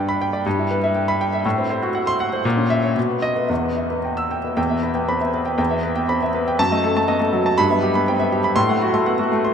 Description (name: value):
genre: classical, virtuoso piano study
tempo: 120 BPM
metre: 2/4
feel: rubato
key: E minor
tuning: A4 = 440 Hz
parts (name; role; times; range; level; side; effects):
- clear grand piano; solo; 0.0-9.5 s; E2 to E6; -18 LUFS; equal; none
room: wet cathedral reverb, RT60 7.0 s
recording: in a vast, echoing space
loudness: -17 LUFS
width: side -7 dB against mid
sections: 0.0-4.6 A section; 4.6-9.5 B section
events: none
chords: 0.5 Em/G; 1.4 F#dim/A; 2.4 A#dim; 3.0 B; 3.5 Em; 6.6 D#dim/F#; 7.6 Em/G; 8.6 F#dim/A